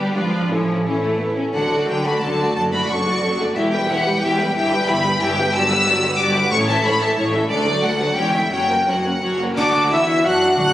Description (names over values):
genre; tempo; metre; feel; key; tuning
classical, dramatic, fast romantic movement for symphony orchestra; 180 BPM; 3/4; rubato; D major; A4 = 440 Hz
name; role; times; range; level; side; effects
clear symphonic violin section; melody; 0.0-10.7 s; C#5 to F#6; -21 LUFS; left 2 dB; none
rich symphonic violin section; second line; 0.0-10.7 s; A3 to G5; -23 LUFS; left 1 dB; none
clear symphonic viola section; accompaniment; 0.0-10.7 s; E3 to B4; -24 LUFS; right 1 dB; none
clear symphonic double bass section; bass; 0.0-10.7 s; E1 to F#2; -27 LUFS; right 1 dB; none
rich symphonic cello section; bass; 0.0-10.7 s; D2 to F#4; -25 LUFS; equal; none
cymbal swell, clash cymbals and concert bass drum; percussion; 7.5-10.2 s; none; -34 LUFS; left 1 dB; none
clear clarinet; second line; 9.6-10.7 s; D4 to F#4; -21 LUFS; equal; none
silver concert flute; second line; 9.6-10.7 s; D5 to F#5; -27 LUFS; left 2 dB; none
mellow French horn section; sustained chords; 9.6-10.7 s; D3 to F#3; -26 LUFS; left 1 dB; none
warm trumpet section; stabs; 9.6-10.7 s; D5 to F#5; -20 LUFS; equal; none
timpani; percussion; 10.6-10.7 s; D3; -23 LUFS; equal; none
room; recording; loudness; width
wet scoring stage reverb, RT60 1.9 s; recorded on a phone in the room, studio reverb; -16 LUFS; side -13 dB against mid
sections
0.0-1.5 A section; 1.5-9.6 A section; 9.6-10.7 B section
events
band accent 9.6-9.9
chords
0.2 G#dim7; 0.5 A; 1.5 D; 2.5 D/F#; 3.5 Em; 4.5 Em/G; 5.5 Gmaj7; 6.5 A; 7.5 D; 8.2 C#dim/E; 8.5 F#; 9.6 Dadd9